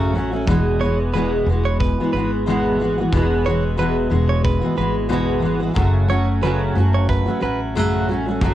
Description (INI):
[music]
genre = acoustic pop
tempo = 91 BPM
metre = 4/4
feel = swing 55% on 16ths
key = E major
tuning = A4 = 440 Hz
[part]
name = fingerpicked steel-string acoustic guitar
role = accompaniment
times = 0.0-8.5 s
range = E2 to F#4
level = -19 LUFS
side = equal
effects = double-tracked left and right, cassette tape
[part]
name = upright bass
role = bass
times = 0.0-8.5 s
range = E1 to A1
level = -22 LUFS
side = equal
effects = none
[part]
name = kick drum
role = drums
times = 0.5-8.5 s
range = none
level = -23 LUFS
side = equal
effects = cassette tape
[part]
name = direct-recorded clean electric guitar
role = arpeggios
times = 0.8-7.6 s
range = B4 to C#5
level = -25 LUFS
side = right 5 dB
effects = cassette tape
[sound]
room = light reverb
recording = home recording on cassette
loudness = -17 LUFS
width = side -13 dB against mid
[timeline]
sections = 0.0-8.5 A section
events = none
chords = 0.5 Eadd9; 5.8 F#m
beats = | 0.48 1.14 1.80 2.46 | 3.12 3.79 4.45 5.11 | 5.77 6.43 7.09 7.75 | 8.41